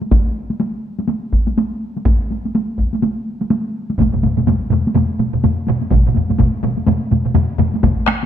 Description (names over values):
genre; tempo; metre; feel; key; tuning
japanese traditional, taiko drum ensemble; 124 BPM; 4/4; swing 60% on 16ths; none; none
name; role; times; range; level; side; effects
taiko ensemble; percussion; 0.0-8.3 s; none; -19 LUFS; equal; none
taiko ensemble; percussion; 0.1-8.0 s; none; -17 LUFS; equal; none
taiko ensemble; percussion; 4.0-8.2 s; none; -19 LUFS; left 5 dB; none
taiko ensemble; percussion; 4.0-8.2 s; none; -19 LUFS; right 4 dB; none
room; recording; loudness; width
wet recital hall reverb, RT60 1.5 s; dark, warm production; -15 LUFS; side -10 dB against mid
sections
0.0-4.0 A section; 4.0-8.3 B section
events
none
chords
none